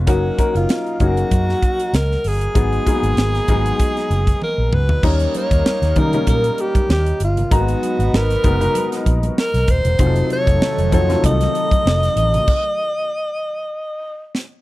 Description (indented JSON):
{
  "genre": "polished 1980s jazz-funk pop",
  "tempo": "97 BPM",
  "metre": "4/4",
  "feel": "swing 54% on 16ths",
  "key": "G# dorian",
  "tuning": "A4 = 439 Hz",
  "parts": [
    { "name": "warm baby grand piano", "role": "accompaniment", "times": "0.0-12.5 s", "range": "C3 to A#5", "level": "-23 LUFS", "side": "left 4 dB", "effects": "analog chorus" },
    { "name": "vintage muted fingered electric bass", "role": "bass", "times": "0.0-12.4 s", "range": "D#1 to D#3", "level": "-18 LUFS", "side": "equal", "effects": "none" },
    { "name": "breathy alto saxophone", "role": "melody", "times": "0.1-14.3 s", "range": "E#4 to Eb5", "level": "-21 LUFS", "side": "equal", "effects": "slapback echo" },
    { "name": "tight funk drum kit", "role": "drums", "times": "0.1-14.5 s", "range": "crash cymbal, hi-hat, kick drum, snare drum, toms", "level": "-19 LUFS", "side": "equal", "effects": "none" },
    { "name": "mellow horn section", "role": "second line", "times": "5.0-12.1 s", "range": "F#3 to B4", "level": "-28 LUFS", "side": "right 5 dB", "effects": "none" },
    { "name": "congas", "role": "percussion", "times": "5.0-12.5 s", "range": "none", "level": "-29 LUFS", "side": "right 2 dB", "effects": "none" },
    { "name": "soft string machine", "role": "sustained chords", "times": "10.0-12.5 s", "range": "Eb3 to A3", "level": "-29 LUFS", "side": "equal", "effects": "phaser, ensemble chorus" }
  ],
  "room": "small room ambience",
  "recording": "dry, close 1970s-style studio recording",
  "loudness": "-15 LUFS",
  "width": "side -17 dB against mid",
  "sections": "0.0-5.0 A section; 5.0-14.6 B section",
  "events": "drum fill 4.4-5.0, 14.3; stop 12.5-14.6",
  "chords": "0.1 F#6; 2.6 G#m7; 5.0 D#7; 7.5 G#m9; 10.0 F7b9; 12.5 N.C.",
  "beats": "| 0.07 0.69 1.31 1.93 | 2.55 3.17 3.79 4.41 | 5.04 5.66 6.28 6.89 | 7.52 8.14 8.76 9.38 | 10.00 10.62 11.24 11.86 | 12.48 13.10 13.72 14.34"
}